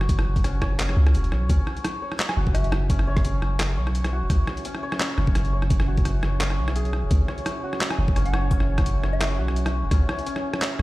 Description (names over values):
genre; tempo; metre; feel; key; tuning
half-time drum and bass; 171 BPM; 4/4; swing 54% on 16ths, half-time; C# minor; A4 = 441 Hz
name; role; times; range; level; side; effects
santur; arpeggios; 0.0-10.8 s; C#4 to C#5; -32 LUFS; left 2 dB; dub echo
long sustained 808-style bass; bass; 0.0-10.8 s; E1 to C#2; -22 LUFS; equal; none
boom bap sampler-style drum kit; drums; 0.0-10.8 s; handclaps, hi-hat, rim click; -29 LUFS; equal; studio reverb
electronic kick drum; drums; 0.1-10.0 s; none; -23 LUFS; equal; overdrive, studio reverb
deep dark ambient pad; sustained chords; 2.1-10.8 s; C#4 to G#5; -35 LUFS; right 3 dB; chorus, built-in reverb, sidechain pumping
soft synth bell; melody; 2.3-3.0, 7.9-9.4 s; E5 to G#5; -35 LUFS; left 1 dB; chorus, phaser, dub echo
room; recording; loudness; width
little or no reverb; played on a big sound system in a bare room, stone room reverb; -21 LUFS; side -19 dB against mid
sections
0.0-10.8 A section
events
kick drops out 0.8-1.5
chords
0.0 C#m